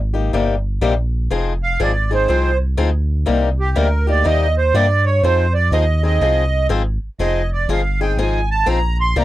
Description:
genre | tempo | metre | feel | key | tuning
acoustic string swing (jazz manouche) | 122 BPM | 4/4 | swing 63% on 8ths | unclear | A4 = 441 Hz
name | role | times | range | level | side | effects
round analog bass | bass | 0.0-9.2 s | F1 to G2 | -18 LUFS | equal | none
picked swing-style acoustic guitar | accompaniment | 0.1-9.2 s | C3 to Ab4 | -20 LUFS | left 6 dB | none
accordion | melody | 1.6-9.2 s | G4 to C6 | -19 LUFS | right 4 dB | light tremolo tuning
room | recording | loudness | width
little or no reverb | dry, close 1970s-style studio recording | -15 LUFS | side -15 dB against mid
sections
0.0-9.2 A section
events
accordion solo 0.0-9.2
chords
0.0 Cm7; 1.3 Fm7; 3.3 Cm7; 5.2 Fm7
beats
0.32 0.81 | 1.30 1.79 2.28 2.78 | 3.27 3.76 4.25 4.74 | 5.23 5.72 6.21 6.70 | 7.19 7.68 8.17 8.66 | 9.16

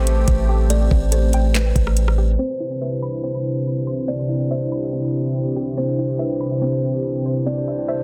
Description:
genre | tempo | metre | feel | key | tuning
hip hop, atmospheric cloud-rap | 142 BPM | 4/4 | half-time | C major | A4 = 441 Hz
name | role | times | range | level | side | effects
buzzing kalimba | melody | 0.0-8.0 s | B4 to D5 | -28 LUFS | equal | delay
dark analog pad | sustained chords | 0.0-8.0 s | C3 to G4 | -25 LUFS | equal | chorus, sidechain pumping
warbly dusty pluck | arpeggios | 0.0-8.0 s | A3 to B5 | -34 LUFS | equal | chorus, delay
long sustained 808-style bass | bass | 0.0-2.4 s | A1 | -19 LUFS | equal | none
smooth R&B drum kit | drums | 0.1-2.2 s | handclaps, hi-hat, kick drum, rim click | -22 LUFS | equal | none
room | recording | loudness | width
light reverb | dense, heavily limited modern master, low-pass filter | -20 LUFS | mono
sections
0.0-2.4 A section; 2.4-8.0 B section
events
filter sweep 2.4-8.0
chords
0.0 Am7; 2.4 Cmaj7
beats
0.28 | 0.70 1.12 1.55 1.97 | 2.39 2.81 3.24 3.66 | 4.08 4.50 4.93 5.35 | 5.77 6.19 6.62 7.04 | 7.46 7.88

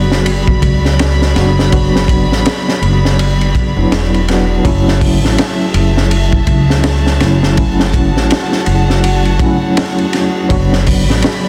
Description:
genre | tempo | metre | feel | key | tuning
trip hop | 82 BPM | 4/4 | swing 59% on 16ths | F# minor | A4 = 441 Hz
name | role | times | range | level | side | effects
mellow tine electric piano | accompaniment | 0.0-11.5 s | F#3 to F#4 | -19 LUFS | equal | tremolo, tape echo
dark chamber string section | sustained chords | 0.0-11.5 s | F#4 to B5 | -24 LUFS | equal | none
upright bass | bass | 0.0-11.2 s | E1 to C#2 | -16 LUFS | equal | none
crunchy breakbeat drum kit | drums | 0.1-11.4 s | hi-hat, kick drum, ride cymbal, snare drum | -17 LUFS | equal | none
room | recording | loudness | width
small room ambience | dense, heavily limited modern master | -12 LUFS | mono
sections
0.0-11.5 A section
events
none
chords
0.0 Bm/F#; 4.6 F#m7; 10.5 Bm/F#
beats
0.25 0.98 | 1.72 2.45 3.18 3.91 | 4.64 5.38 6.11 6.84 | 7.57 8.30 9.03 9.77 | 10.50 11.23

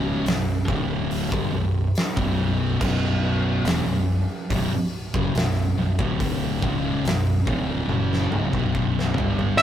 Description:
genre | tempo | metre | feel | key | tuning
stoner and doom metal | 71 BPM | 4/4 | straight | B minor | A4 = 441 Hz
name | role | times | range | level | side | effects
thick fuzz guitar | riff | 0.0-9.6 s | B1 to G3 | -25 LUFS | left 4 dB | distortion
thick fuzz guitar | riff | 0.0-9.6 s | B1 to G3 | -27 LUFS | right 6 dB | distortion
overdriven fingered electric bass | bass | 0.0-9.6 s | B0 to G1 | -28 LUFS | equal | tube saturation
oversized low-tuned drum kit | drums | 0.3-9.6 s | crash cymbal, hi-hat, kick drum, snare drum, toms | -26 LUFS | equal | none
octave-fuzz lead guitar | melody | 9.6 s | E5 | -13 LUFS | right 1 dB | distortion
room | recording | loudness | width
light reverb | rough rehearsal-room recording, warm saturation | -21 LUFS | side -10 dB against mid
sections
0.0-9.6 A section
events
drum fill 7.9-9.6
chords
0.0 Bm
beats
0.26 1.11 1.95 | 2.80 3.65 4.50 5.35 | 6.19 7.04 7.89 8.74 | 9.59

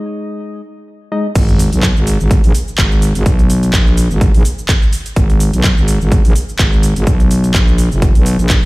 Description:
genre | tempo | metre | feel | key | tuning
bass house | 126 BPM | 4/4 | swing 55% on 16ths | G# minor | A4 = 440 Hz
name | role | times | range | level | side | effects
percussive organ stab | stabs | 0.0-1.3 s | G#3 to D#5 | -22 LUFS | left 2 dB | chorus, sidechain pumping, digital delay
growling FM bass | bass | 1.4-8.7 s | F#1 to B1 | -13 LUFS | equal | tube saturation, sidechain pumping
electronic kick drum | drums | 1.4-8.6 s | none | -12 LUFS | equal | overdrive, small room ambience
garage drum kit | drums | 1.4-8.7 s | crash cymbal, handclaps, hi-hat, shaker | -20 LUFS | right 1 dB | overdrive, small room ambience
sub drop | sound effects | 1.4-3.3 s | none | -22 LUFS | equal | none
room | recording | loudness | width
little or no reverb | played on a big sound system in a bare room, large studio reverb | -10 LUFS | side -21 dB against mid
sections
0.0-1.4 A section; 1.4-8.7 B section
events
drop 1.4-8.7; impact 1.4-3.3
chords
0.0 G#5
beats
0.40 0.88 | 1.35 1.83 2.31 2.78 | 3.26 3.74 4.21 4.69 | 5.17 5.64 6.12 6.59 | 7.07 7.55 8.02 8.50

